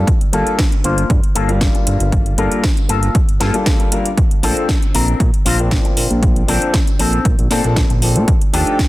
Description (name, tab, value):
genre	nu-disco, nu disco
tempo	117 BPM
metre	4/4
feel	straight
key	G minor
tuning	A4 = 439 Hz
part	warm grand piano	accompaniment	0.0-8.8 s	F3 to Bb4	-22 LUFS	left 2 dB	vintage 12-bit sampler grit, sidechain pumping, digital delay
part	fat analog bass	bass	0.0-8.6 s	G1 to Bb2	-17 LUFS	equal	none
part	electronic kick drum	drums	0.1-8.9 s	none	-16 LUFS	equal	overdrive
part	house drum kit	drums	0.1-8.9 s	hi-hat, snare drum	-22 LUFS	equal	overdrive
part	electric guitar with an envelope filter	riff	0.3-8.8 s	Bb3 to C5	-22 LUFS	left 3 dB	analog chorus, low-pass filter, digital delay
room	digital ambience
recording	dense, heavily limited modern master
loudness	-13 LUFS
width	side -17 dB against mid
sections	0.0-8.9 A section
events	filter sweep on clean electric guitar 0.0-8.9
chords	0.0 Gm9; 4.2 Bbmaj9; 8.3 Ebmaj9#11